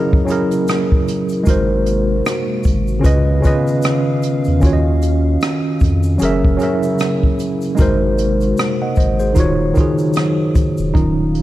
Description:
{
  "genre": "lo-fi hip hop",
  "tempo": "76 BPM",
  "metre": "4/4",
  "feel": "swing 59% on 16ths",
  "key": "Eb minor",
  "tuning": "A4 = 439 Hz",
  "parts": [
    { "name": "mellow tine electric piano", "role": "accompaniment", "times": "0.0-11.4 s", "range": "Db3 to Gb5", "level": "-17 LUFS", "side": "right 1 dB", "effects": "medium stereo tremolo, cassette tape" },
    { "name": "dark analog pad", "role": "sustained chords", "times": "0.0-11.4 s", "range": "C3 to F5", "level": "-24 LUFS", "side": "equal", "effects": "chorus" },
    { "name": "jazz brush drum kit", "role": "drums", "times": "0.1-11.4 s", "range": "hi-hat, kick drum, rim click", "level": "-18 LUFS", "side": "equal", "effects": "vintage 12-bit sampler grit" },
    { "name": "egg shaker", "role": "percussion", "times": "0.3-10.9 s", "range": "none", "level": "-43 LUFS", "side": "left 6 dB", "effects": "none" },
    { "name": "saturated sub bass", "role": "bass", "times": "1.5-11.4 s", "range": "Eb1 to F2", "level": "-18 LUFS", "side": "equal", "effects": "none" }
  ],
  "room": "moderate plate reverb, RT60 2.7 s",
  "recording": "dreamy mix soaked in reverb",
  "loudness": "-13 LUFS",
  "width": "side -15 dB against mid",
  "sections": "0.0-10.9 A section",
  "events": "break 0.0-1.5",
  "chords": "0.0 Gb7; 1.5 Ab9; 3.0 Db9; 4.6 Ebm9; 6.2 Gb7; 7.8 Ab9; 9.4 Ebm7"
}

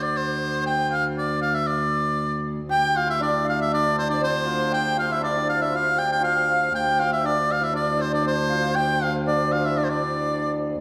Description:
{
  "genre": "medieval dance",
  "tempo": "119 BPM",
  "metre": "2/4",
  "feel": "straight",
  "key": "D minor",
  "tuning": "A4 = 445 Hz",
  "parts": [
    { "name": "edgy shawm", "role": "melody", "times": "0.0-10.5 s", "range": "C5 to G5", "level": "-25 LUFS", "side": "equal", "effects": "none" },
    { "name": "clear viola da gamba", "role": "drone", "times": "0.0-10.8 s", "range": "D2", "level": "-30 LUFS", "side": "equal", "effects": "none" },
    { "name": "hammered dulcimer", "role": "second line", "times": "2.7-10.8 s", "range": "C4 to G4", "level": "-31 LUFS", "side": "equal", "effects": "none" },
    { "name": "mellow tenor recorder", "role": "second line", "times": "2.7-10.5 s", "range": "C5 to G5", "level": "-32 LUFS", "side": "equal", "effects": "none" }
  ],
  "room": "wet recital hall reverb, RT60 1.6 s",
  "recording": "heard from further back in the room",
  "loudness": "-23 LUFS",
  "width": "mono",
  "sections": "0.0-2.7 A section; 2.7-10.8 A section",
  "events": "none",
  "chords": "none"
}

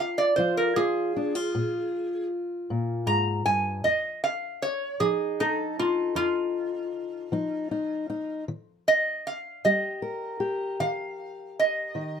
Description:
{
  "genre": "acoustic country blues, solo or duo",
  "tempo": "52 BPM (dotted quarters)",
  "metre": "12/8",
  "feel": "straight",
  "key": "unclear",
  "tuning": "A4 = 439 Hz",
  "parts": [
    { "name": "metal-body resonator slide guitar", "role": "melody", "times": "0.0-12.2 s", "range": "Eb4 to Bb5", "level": "-25 LUFS", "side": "right 1 dB", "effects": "none" },
    { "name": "fingerpicked steel-string acoustic guitar", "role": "accompaniment", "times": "0.0-12.2 s", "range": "F2 to Bb4", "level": "-29 LUFS", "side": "left 2 dB", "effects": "none" }
  ],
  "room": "little or no reverb",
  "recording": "close, detailed microphones",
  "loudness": "-25 LUFS",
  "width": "side -7 dB against mid",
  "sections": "0.0-12.2 A section",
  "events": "none",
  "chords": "0.0 Bb7(no3); 3.9 F7; 8.5 Eb"
}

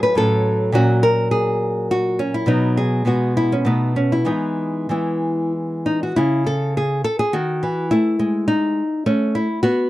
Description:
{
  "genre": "classical, baroque-style dance for nylon-string guitar",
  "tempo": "94-108 BPM",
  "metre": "3/4",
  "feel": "rubato",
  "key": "E major",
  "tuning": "A4 = 440 Hz",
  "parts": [
    { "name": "nylon-string guitar", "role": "solo", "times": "0.0-9.9 s", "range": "A2 to B4", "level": "-17 LUFS", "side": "equal", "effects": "none" }
  ],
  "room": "light reverb",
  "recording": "dry, close 1970s-style studio recording",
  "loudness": "-17 LUFS",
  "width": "side -16 dB against mid",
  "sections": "0.0-6.2 A section; 6.2-9.9 A section",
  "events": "none",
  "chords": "0.0 F#m/A; 0.7 F#/A#; 2.5 B; 3.1 E69/B; 3.7 B7; 4.3 E; 6.2 C#m; 7.9 A5"
}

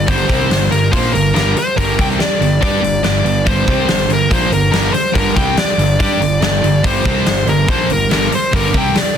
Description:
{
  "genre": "hard rock",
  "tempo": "142 BPM",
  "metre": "4/4",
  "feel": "straight",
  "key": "G minor",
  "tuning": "A4 = 441 Hz",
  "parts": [
    { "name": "smooth overdriven lead guitar", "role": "melody", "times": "0.0-9.2 s", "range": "Bb4 to G5", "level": "-18 LUFS", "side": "left 1 dB", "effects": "none" },
    { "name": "distorted electric guitar", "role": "riff", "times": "0.0-9.0 s", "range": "G2 to G4", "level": "-22 LUFS", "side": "left 10 dB", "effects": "overdrive" },
    { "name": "sludgy distorted guitar", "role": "riff", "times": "0.0-9.2 s", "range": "G2 to G4", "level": "-21 LUFS", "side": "right 9 dB", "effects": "overdrive" },
    { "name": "sludgy distorted guitar", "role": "riff", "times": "0.0-9.0 s", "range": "G2 to G4", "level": "-23 LUFS", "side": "equal", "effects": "none" },
    { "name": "fuzz picked electric bass", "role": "bass", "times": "0.0-9.0 s", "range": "G1 to G2", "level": "-20 LUFS", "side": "equal", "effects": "overdrive" },
    { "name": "huge arena drum kit", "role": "drums", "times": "0.1-9.1 s", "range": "hi-hat, kick drum, snare drum", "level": "-17 LUFS", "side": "equal", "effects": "none" }
  ],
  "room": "light reverb",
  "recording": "dense, heavily limited modern master",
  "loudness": "-12 LUFS",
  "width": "side -8 dB against mid",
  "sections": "0.0-9.2 A section",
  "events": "none",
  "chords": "0.0 Gm"
}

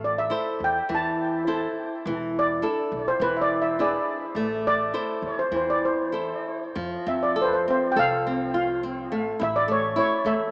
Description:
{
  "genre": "fado-style ballad",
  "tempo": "103 BPM",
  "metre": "4/4",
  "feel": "rubato",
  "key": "A minor",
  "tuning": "A4 = 439 Hz",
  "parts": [
    { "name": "steel pan", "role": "melody", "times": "0.0-10.5 s", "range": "B4 to A5", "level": "-24 LUFS", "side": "equal", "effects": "diffuse ambient delay" },
    { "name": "flamenco guitar", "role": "accompaniment", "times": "0.0-10.5 s", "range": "E3 to C5", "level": "-26 LUFS", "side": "equal", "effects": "none" },
    { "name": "upright bass", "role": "bass", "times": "0.0-10.5 s", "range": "E1 to F2", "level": "-38 LUFS", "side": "equal", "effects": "none" }
  ],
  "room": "wet plate reverb, RT60 3.7 s",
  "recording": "dreamy mix soaked in reverb, small speaker sound",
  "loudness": "-22 LUFS",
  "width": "side -29 dB against mid",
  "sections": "0.0-6.8 A section; 6.8-10.5 B section",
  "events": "none",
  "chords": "0.0 Am; 2.1 E7sus4; 3.2 E7; 4.4 Am; 6.8 F; 9.1 A5"
}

